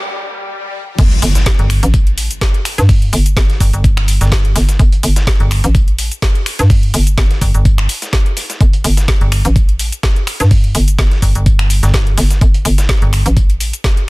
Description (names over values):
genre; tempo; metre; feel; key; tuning
bass house; 126 BPM; 4/4; swing 55% on 16ths; G minor; A4 = 441 Hz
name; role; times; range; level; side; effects
rich studio string section; sustained chords; 0.0-0.9 s; D3 to G4; -30 LUFS; left 4 dB; sidechain pumping
riser, swell and impact; sound effects; 0.0-2.9 s; none; -23 LUFS; equal; none
hollow knocking FM bass; bass; 1.0-13.7 s; G1 to G2; -13 LUFS; equal; overdrive, sidechain pumping
dusty soul sampler-style drum kit; drums; 1.0-14.0 s; hi-hat, snare drum, tambourine; -28 LUFS; left 1 dB; overdrive, sidechain pumping on perc, high-pass filter on perc, sidechain pumping on hats, high-pass filter on hats, high-pass filter on snare
electronic kick drum; drums; 1.0-13.9 s; none; -12 LUFS; equal; none
garage drum kit; drums; 1.0-14.1 s; crash cymbal, finger snaps, hi-hat, shaker, snare drum; -20 LUFS; equal; soft clipping on snare, high-pass filter on snare, high-pass filter on hats, high-pass filter on cymbals, high-pass filter on perc, high-pass filter on room
metallic FM bass; bass; 1.6-13.2 s; G1; -13 LUFS; equal; tube saturation, sidechain pumping
room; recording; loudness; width
little or no reverb; dense, heavily limited modern master, high-pass filter; -10 LUFS; side -23 dB against mid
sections
1.0-14.1 A section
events
break 0.0-1.0; swell 0.0-1.0; drop 1.0-14.1; impact 1.0-2.9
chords
0.0 Gm; 1.0 N.C.